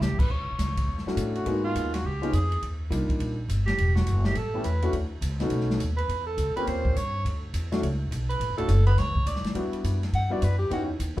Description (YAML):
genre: jazz, small-group swing and bop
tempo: 208 BPM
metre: 4/4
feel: swing 62% on 8ths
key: D major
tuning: A4 = 440 Hz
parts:
  - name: clear tenor saxophone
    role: second line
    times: 0.0-9.5 s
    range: F4 to D5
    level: -31 LUFS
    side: right 2 dB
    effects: none
  - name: upright bass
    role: bass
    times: 0.0-11.2 s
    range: D1 to A2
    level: -26 LUFS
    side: equal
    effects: none
  - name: open jazz drum kit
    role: drums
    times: 0.0-11.2 s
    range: crash cymbal, hi-hat, kick drum, ride cymbal, snare drum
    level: -31 LUFS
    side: equal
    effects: none
  - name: warm upright piano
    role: accompaniment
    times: 1.1-11.2 s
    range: E3 to G4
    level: -30 LUFS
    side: left 2 dB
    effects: none
  - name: warm soprano saxophone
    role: melody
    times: 10.1-10.8 s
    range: F#4 to F#5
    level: -30 LUFS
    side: left 1 dB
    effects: none
room: wet club reverb, RT60 0.7 s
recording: heard from further back in the room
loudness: -24 LUFS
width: side -16 dB against mid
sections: 0.3-9.6 A section; 9.6-11.2 A section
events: tenor saxophone solo 0.0-9.6; soprano saxophone solo 9.6-11.2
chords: 0.3 Dmaj9; 1.5 G#m7; 2.0 C#9; 2.6 Ebmaj9; 3.8 Esus2; 4.4 A9; 4.9 Dmaj7; 5.5 B7; 6.1 Emadd11; 6.7 Eb13; 7.2 Dmaj9; 9.6 Em9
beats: 0.02 | 0.31 0.60 0.89 1.18 | 1.46 1.75 2.04 2.33 | 2.62 2.91 3.20 3.49 | 3.78 4.07 4.36 4.64 | 4.93 5.22 5.51 5.80 | 6.09 6.38 6.67 6.96 | 7.25 7.53 7.82 8.11 | 8.40 8.69 8.98 9.27 | 9.55 9.84 10.13 10.42 | 10.71 11.00